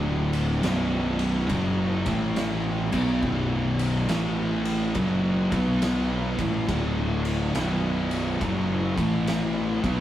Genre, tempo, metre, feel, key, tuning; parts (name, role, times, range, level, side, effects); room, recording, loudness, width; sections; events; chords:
stoner and doom metal; 70 BPM; 4/4; swing 66% on 8ths; B minor; A4 = 442 Hz
high-gain distorted guitar; riff; 0.0-10.0 s; B1 to B3; -35 LUFS; equal; distortion
thick fuzz guitar; riff; 0.0-10.0 s; B1 to B3; -28 LUFS; left 3 dB; distortion
thick fuzz guitar; riff; 0.0-10.0 s; B1 to B3; -28 LUFS; right 3 dB; distortion
fuzz fingered electric bass; bass; 0.0-10.0 s; B0 to B1; -29 LUFS; equal; overdrive
oversized low-tuned drum kit; drums; 0.3-10.0 s; crash cymbal, kick drum, ride cymbal, snare drum; -31 LUFS; equal
moderate small room reverb, RT60 0.5 s; rough rehearsal-room recording; -23 LUFS; side -12 dB against mid
0.0-10.0 A section
0.0 D5; 0.6 B5; 1.9 A5; 2.8 B5; 4.1 A5; 5.0 B5; 6.7 D5; 7.5 B5; 8.8 A5